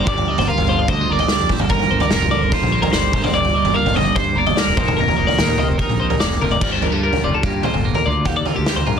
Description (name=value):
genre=math rock and midwest emo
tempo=147 BPM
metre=4/4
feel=straight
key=G minor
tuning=A4 = 440 Hz
part: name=cranked stack guitar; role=melody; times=0.0-6.2 s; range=Bb4 to F5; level=-21 LUFS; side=equal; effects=overdrive, phaser, tape echo
part: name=twelve-string electric guitar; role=accompaniment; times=0.0-9.0 s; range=G2 to Bb4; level=-24 LUFS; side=right 8 dB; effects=none
part: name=twelve-string electric guitar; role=arpeggios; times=0.0-9.0 s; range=G4 to F5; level=-23 LUFS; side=left 6 dB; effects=none
part: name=fuzz fingered electric bass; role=bass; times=0.0-9.0 s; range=E1 to G2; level=-23 LUFS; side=equal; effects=overdrive
part: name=loose indie drum kit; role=drums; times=0.1-9.0 s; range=crash cymbal, kick drum, snare drum, toms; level=-19 LUFS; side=equal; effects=none
room=light reverb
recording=dense, heavily limited modern master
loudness=-15 LUFS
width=side -7 dB against mid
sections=0.0-6.6 A section; 6.6-9.0 B section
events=drum fill 6.4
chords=0.0 Gm7; 3.1 C7sus2/G; 4.8 F7sus4; 6.6 Gm7; 8.3 Ebmaj9#11